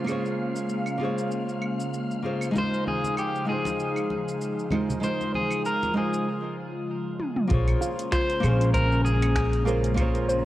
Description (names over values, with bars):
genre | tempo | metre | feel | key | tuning
sunset chillout | 97 BPM | 4/4 | swing 56% on 16ths | unclear | A4 = 440 Hz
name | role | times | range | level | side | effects
nylon-string guitar | accompaniment | 0.0-10.4 s | Ab3 to Db5 | -30 LUFS | equal | auto-pan, digital delay
airy breathy pad | sustained chords | 0.0-10.4 s | Db3 to F4 | -31 LUFS | right 1 dB | chorus
wind-like tuned noise texture | texture | 0.0-10.4 s | Bb4 to F6 | -40 LUFS | left 1 dB | built-in reverb
deep house drum kit | drums | 0.1-10.4 s | claves, finger snaps, hi-hat, shaker, toms | -34 LUFS | equal | overdrive
electric guitar at the edge of break-up | melody | 2.6-9.6 s | G4 to C5 | -30 LUFS | left 2 dB | spring reverb, ping-pong delay
congas | percussion | 2.6-5.9 s | none | -34 LUFS | left 1 dB | none
upright bass | bass | 7.5-10.4 s | Bb1 | -24 LUFS | equal | none
electronic kick drum | drums | 7.5-10.1 s | none | -27 LUFS | equal | none
soft round pluck | arpeggios | 7.8-10.4 s | F4 to Ab5 | -31 LUFS | right 1 dB | chorus, digital delay
room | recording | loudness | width
moderate lush hall reverb, RT60 1.9 s | worn, warbling old tape, cassette tape, warbly pitch drift | -23 LUFS | side -14 dB against mid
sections
0.0-7.5 A section; 7.5-10.4 B section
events
break 6.3-7.5; drum fill 7.2-7.5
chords
0.0 Bbm9; 2.6 Ab6; 7.5 Bbm9